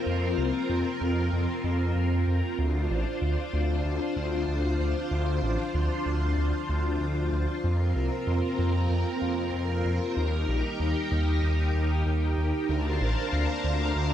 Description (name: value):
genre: synthwave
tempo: 95 BPM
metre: 4/4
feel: straight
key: D phrygian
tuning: A4 = 440 Hz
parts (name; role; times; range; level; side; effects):
- string machine, full ensemble; sustained chords; 0.0-14.1 s; C4 to A5; -29 LUFS; equal; phaser, ensemble chorus
- wide detuned saw bass; bass; 0.1-14.1 s; A1 to F2; -27 LUFS; equal; chorus, tube saturation
room: light reverb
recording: dark, warm production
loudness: -25 LUFS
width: side -10 dB against mid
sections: 0.0-12.7 A section; 12.7-14.1 B section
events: none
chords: 0.0 Fsus4; 2.6 Dm7; 7.6 Fsus4; 10.2 Eb; 12.7 Bbmaj7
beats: | 0.06 0.69 1.32 1.96 | 2.59 3.22 3.85 4.48 | 5.11 5.75 6.38 7.01 | 7.64 8.27 8.90 9.54 | 10.17 10.80 11.43 12.06 | 12.69 13.32 13.96